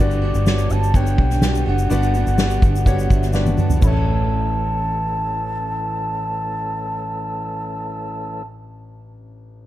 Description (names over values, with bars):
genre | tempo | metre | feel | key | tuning
piano-driven pop | 125 BPM | 4/4 | straight | A mixolydian | A4 = 439 Hz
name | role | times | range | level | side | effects
mellow bansuri | melody | 0.0-8.4 s | D5 to B5 | -26 LUFS | equal | none
dark concert grand piano | accompaniment | 0.0-9.7 s | A1 to A5 | -27 LUFS | left 3 dB | none
tonewheel organ | sustained chords | 0.0-8.4 s | D3 to A4 | -32 LUFS | left 1 dB | overdrive, fast rotary speaker
picked steel-string acoustic guitar | riff | 0.0-8.6 s | A2 to A4 | -30 LUFS | right 7 dB | none
vintage muted fingered electric bass | bass | 0.0-8.4 s | F#1 to B1 | -20 LUFS | equal | none
soft-mallet drum kit | drums | 0.1-3.9 s | crash cymbal, kick drum, ride cymbal, snare drum, toms | -19 LUFS | equal | none
tube shaker | percussion | 0.1-4.0 s | none | -40 LUFS | left 8 dB | none
room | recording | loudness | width
light reverb | dark, warm production | -17 LUFS | side -14 dB against mid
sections
0.0-3.8 A section; 3.8-7.7 B section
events
grand piano fill 2.9-3.8; drum fill 3.3-3.8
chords
0.0 Gmaj7; 3.8 A